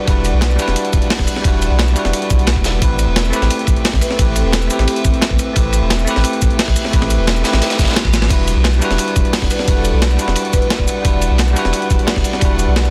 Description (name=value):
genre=liquid drum and bass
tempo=175 BPM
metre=4/4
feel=straight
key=E minor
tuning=A4 = 440 Hz
part: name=bell-like tine electric piano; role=accompaniment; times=0.0-12.9 s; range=G3 to B4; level=-23 LUFS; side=equal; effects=tape echo
part: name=airy breathy pad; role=sustained chords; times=0.0-12.9 s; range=C4 to F#5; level=-28 LUFS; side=equal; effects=chorus, sidechain pumping
part: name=warm sub bass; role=bass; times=0.1-12.9 s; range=E1 to B1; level=-19 LUFS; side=equal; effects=none
part: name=breakbeat sampler-style drum kit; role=drums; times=0.1-12.9 s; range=crash cymbal, hi-hat, shaker, snare drum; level=-23 LUFS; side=equal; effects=none
part: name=crunchy breakbeat drum kit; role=drums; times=0.1-12.9 s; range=hi-hat, ride cymbal, snare drum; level=-26 LUFS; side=equal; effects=high-pass filter on cymbals, high-pass filter on hats, high-pass filter on snare, high-pass filter on room
part: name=electronic kick drum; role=drums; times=0.1-12.5 s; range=none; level=-19 LUFS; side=equal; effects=none
part: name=vibraphone with medium mallets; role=melody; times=4.0-5.0, 9.5-10.8 s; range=G4 to B4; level=-31 LUFS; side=equal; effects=none
part: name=reverse cymbal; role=sound effects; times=8.0-8.3 s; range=none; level=-36 LUFS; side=equal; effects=none
room=little or no reverb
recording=dense, heavily limited modern master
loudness=-15 LUFS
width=mono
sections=0.0-12.9 A section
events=drum fill 8.0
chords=0.0 Em9; 2.8 Am9; 8.3 Em9